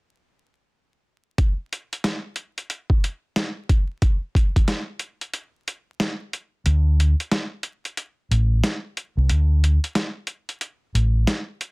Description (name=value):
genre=hip hop, boom-bap hip-hop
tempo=91 BPM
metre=4/4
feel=swing 61% on 16ths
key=unclear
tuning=A4 = 443 Hz
part: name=boom bap sampler-style drum kit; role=drums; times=1.4-11.7 s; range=hi-hat, kick drum, snare drum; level=-21 LUFS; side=equal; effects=none
part: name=fingered electric bass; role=bass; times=6.7-11.2 s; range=A1 to D2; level=-17 LUFS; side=equal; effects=none
room=little or no reverb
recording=dense, heavily limited modern master, vinyl crackle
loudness=-20 LUFS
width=side -34 dB against mid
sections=1.4-6.7 A section; 6.7-11.7 B section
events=break 5.3-6.7; kick muted 6.7-11.7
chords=none